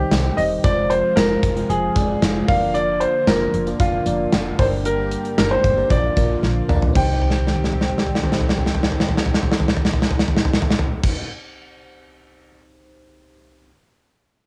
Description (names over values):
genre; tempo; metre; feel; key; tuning
1980s-style pop; 114 BPM; 4/4; straight; C minor; A4 = 441 Hz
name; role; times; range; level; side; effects
clear baby grand piano; melody; 0.0-11.1 s; F4 to G5; -24 LUFS; equal; cassette tape
FM electric piano; accompaniment; 0.0-13.7 s; C2 to Eb5; -29 LUFS; equal; chorus, cassette tape
brassy analog pad; sustained chords; 0.0-11.1 s; C3 to G4; -30 LUFS; equal; chorus, cassette tape
solid FM bass; bass; 0.0-11.1 s; E1 to C2; -27 LUFS; equal; none
gated 80s drum kit; drums; 0.1-12.6 s; crash cymbal, hi-hat, kick drum, snare drum, tambourine, toms; -22 LUFS; equal; cassette tape
room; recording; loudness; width
wet booth ambience, RT60 0.2 s; home recording on cassette, studio reverb; -19 LUFS; mono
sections
0.0-7.0 A section; 7.0-11.2 B section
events
drum fill 6.4-7.0, 7.2-11.0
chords
0.0 Cm; 0.6 Fm; 2.5 Bb/F; 4.6 Gm; 5.9 Bb; 7.0 Cm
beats
0.11 | 0.64 1.17 1.69 2.22 | 2.75 3.27 3.80 4.32 | 4.85 5.38 5.90 6.43 | 6.96 7.48 8.01 8.53 | 9.06 9.59 10.11 10.64